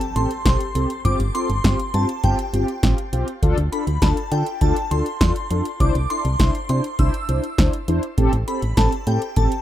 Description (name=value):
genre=synth-pop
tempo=101 BPM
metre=4/4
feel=straight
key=A minor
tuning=A4 = 442 Hz
part: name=shimmering bell with halo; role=melody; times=0.0-9.6 s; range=G5 to E6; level=-27 LUFS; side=equal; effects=ensemble chorus, digital delay, shimmer reverb
part: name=electro analog drum machine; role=drums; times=0.0-9.6 s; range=hi-hat, kick drum, snare drum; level=-21 LUFS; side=equal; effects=none
part: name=impact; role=sound effects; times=0.1-1.1 s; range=none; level=-44 LUFS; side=equal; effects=none
part: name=mellow synth brass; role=accompaniment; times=0.2-9.5 s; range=C4 to C5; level=-25 LUFS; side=left 1 dB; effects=chorus, shimmer reverb
part: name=solid FM bass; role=bass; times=0.2-9.5 s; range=G1 to D3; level=-20 LUFS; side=equal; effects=none
room=light reverb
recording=rough home demo mix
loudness=-18 LUFS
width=side -12 dB against mid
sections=0.0-9.6 A section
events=impact 0.0-1.1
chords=0.0 Am7; 1.1 G7sus4; 3.4 Dm; 5.8 Cadd9; 8.2 Am7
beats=0.46 | 1.05 1.64 2.24 2.83 | 3.43 4.02 4.62 5.21 | 5.80 6.40 6.99 7.58 | 8.18 8.77 9.37